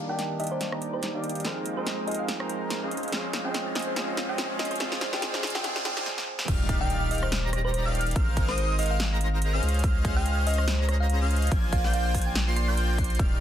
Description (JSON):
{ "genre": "future bass", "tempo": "143 BPM", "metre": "4/4", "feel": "swing 56% on 16ths, half-time", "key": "Eb major", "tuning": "A4 = 444 Hz", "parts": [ { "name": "tine electric piano", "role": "accompaniment", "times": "0.0-6.5 s", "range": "Eb3 to Ab4", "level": "-34 LUFS", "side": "right 3 dB", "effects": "sidechain pumping, dub echo" }, { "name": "shimmering ambient pad", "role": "sustained chords", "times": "0.5-6.0 s", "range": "Ab3 to G5", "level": "-42 LUFS", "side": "left 1 dB", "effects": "none" }, { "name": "soft supersaw", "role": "riff", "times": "0.0-13.4 s", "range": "Eb3 to C6", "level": "-33 LUFS", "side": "equal", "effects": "sidechain pumping, low-pass filter" }, { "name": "riser and impact", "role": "sound effects", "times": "0.0-8.2 s", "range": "none", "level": "-38 LUFS", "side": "equal", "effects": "none" }, { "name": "thumb-piano-like synth pluck", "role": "melody", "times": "0.1-13.0 s", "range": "C5 to C6", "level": "-35 LUFS", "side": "equal", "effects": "chorus, phaser, cassette tape, sidechain pumping, dub echo" }, { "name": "big-room dance drum kit", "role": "drums", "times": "0.2-13.3 s", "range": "crash cymbal, hi-hat, rim click, snare drum", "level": "-32 LUFS", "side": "equal", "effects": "none" }, { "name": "airy dreamy lead", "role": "arpeggios", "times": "6.5-13.4 s", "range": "Eb6 to C7", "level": "-34 LUFS", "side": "left 1 dB", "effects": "chorus, sidechain pumping, dub echo" }, { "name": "saturated sub bass", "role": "bass", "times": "6.5-13.4 s", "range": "Eb1 to Db2", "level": "-26 LUFS", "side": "equal", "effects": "sidechain pumping" }, { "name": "electronic kick drum", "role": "drums", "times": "6.5-13.3 s", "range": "none", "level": "-26 LUFS", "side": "equal", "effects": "none" } ], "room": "light reverb", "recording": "dense, heavily limited modern master, high-pass filter", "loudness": "-24 LUFS", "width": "side -10 dB against mid", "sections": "0.0-6.5 A section; 6.5-13.4 B section", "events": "build-up 0.0-6.5; drum fill 0.0-6.1, 6.1-6.5; riser 0.0-6.1; filter sweep on supersaw synth 0.0-6.5; filter sweep on synth pluck 0.0-6.5; filter sweep 0.0-6.5; drop 6.5-13.4; impact 6.5-8.2", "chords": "0.0 Ebmaj7; 1.4 Ab6; 2.9 Dbmaj7; 4.8 Bb7; 6.5 Ebmaj7; 8.2 Ab6; 9.6 Dbmaj7; 11.5 Bb7" }